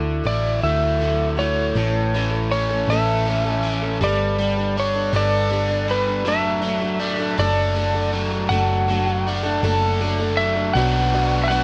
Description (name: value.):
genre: rock.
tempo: 53 BPM (dotted quarters).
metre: 6/8.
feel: straight.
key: unclear.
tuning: A4 = 444 Hz.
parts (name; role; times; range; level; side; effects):
picked old ladder-braced acoustic guitar; accompaniment; 0.0-11.6 s; A2 to A4; -29 LUFS; equal; none.
biting overdriven guitar; riff; 0.0-11.6 s; A2 to A4; -27 LUFS; equal; none.
hollow-body short-scale picked electric bass; bass; 0.0-11.6 s; F#1 to D2; -26 LUFS; equal; none.
electric slide guitar; melody; 0.3-11.6 s; B4 to F#5; -25 LUFS; equal; none.
dark upright piano; accompaniment; 10.8-11.6 s; F#4 to D5; -33 LUFS; equal; none.
room: light reverb, small room ambience.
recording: nothing above 10.8 kHz.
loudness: -21 LUFS.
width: mono.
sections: 0.0-1.8 A section; 1.8-10.8 B section.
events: none.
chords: 0.0 Dadd9; 1.8 A; 4.0 Gadd9; 6.3 D/F#; 10.8 Bm.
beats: 0.63 | 1.75 2.88 | 4.01 5.13 | 6.26 7.38 | 8.51 9.63 | 10.76.